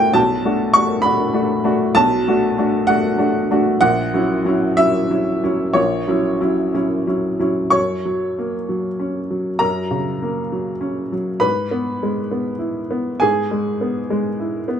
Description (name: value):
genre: neoclassical minimalist piano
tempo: 59-68 BPM (dotted quarters)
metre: 6/8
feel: rubato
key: unclear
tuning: A4 = 440 Hz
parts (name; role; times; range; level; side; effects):
- warm upright piano; solo; 0.0-14.8 s; A1 to C#6; -16 LUFS; equal; none
room: light reverb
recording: nothing above 10.9 kHz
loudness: -16 LUFS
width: side -8 dB against mid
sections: 0.0-7.7 A section; 7.7-14.8 B section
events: none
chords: 0.2 Bm7; 3.8 F#7/A#; 7.7 F#; 11.4 E/G#